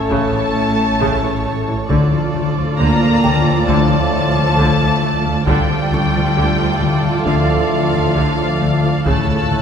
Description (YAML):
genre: cinematic, suspense film score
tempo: 67 BPM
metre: 4/4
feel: straight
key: D harmonic minor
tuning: A4 = 440 Hz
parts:
  - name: muted studio violin section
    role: melody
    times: 0.0-9.6 s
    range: F5 to Bb5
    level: -22 LUFS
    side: left 3 dB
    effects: none
  - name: muted studio violin section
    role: second line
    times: 0.0-9.6 s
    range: A4 to D5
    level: -24 LUFS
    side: right 2 dB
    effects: none
  - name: dark trombone section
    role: sustained chords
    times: 0.0-9.6 s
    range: A2 to A3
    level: -26 LUFS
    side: right 2 dB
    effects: none
  - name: granular cloud pad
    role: sustained chords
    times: 0.0-9.6 s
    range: F4 to A5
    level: -30 LUFS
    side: equal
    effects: none
  - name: mellow French horn section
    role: sustained chords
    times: 0.0-9.6 s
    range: D3 to C#5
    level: -25 LUFS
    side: left 2 dB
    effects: none
  - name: concert harp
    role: riff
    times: 0.0-9.6 s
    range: A2 to D4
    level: -19 LUFS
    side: left 4 dB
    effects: none
  - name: muted symphonic cello section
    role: bass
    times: 0.0-9.6 s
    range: F3 to Bb3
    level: -22 LUFS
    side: right 3 dB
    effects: none
  - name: swarming drone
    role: drone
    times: 0.0-9.6 s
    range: A1 to D2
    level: -27 LUFS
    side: right 1 dB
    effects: built-in reverb
  - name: music box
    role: texture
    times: 0.0-9.6 s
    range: C#4 to C#6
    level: -31 LUFS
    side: right 3 dB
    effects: none
  - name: muted studio violin section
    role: texture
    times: 0.0-1.4, 9.1-9.6 s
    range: C#6 to G#6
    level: -33 LUFS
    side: left 4 dB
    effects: none
  - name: muted studio viola section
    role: accompaniment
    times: 0.1-9.6 s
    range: C#3 to F4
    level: -23 LUFS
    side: right 3 dB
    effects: none
  - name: muted studio double bass section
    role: bass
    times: 0.1-9.6 s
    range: A1 to D2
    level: -25 LUFS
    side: right 2 dB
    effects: none
  - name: taiko ensemble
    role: drums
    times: 0.1-9.6 s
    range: none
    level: -26 LUFS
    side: equal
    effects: none
  - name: timpani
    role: percussion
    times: 1.9-3.2, 9.1-9.6 s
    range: A2 to D3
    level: -30 LUFS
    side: equal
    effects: none
room: wet concert hall reverb, RT60 2.1 s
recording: minimal, uncompressed stereo recording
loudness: -13 LUFS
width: side -7 dB against mid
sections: 0.0-9.6 A section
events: timpani fill 9.1-9.6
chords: 0.0 A; 1.9 Dm; 9.1 A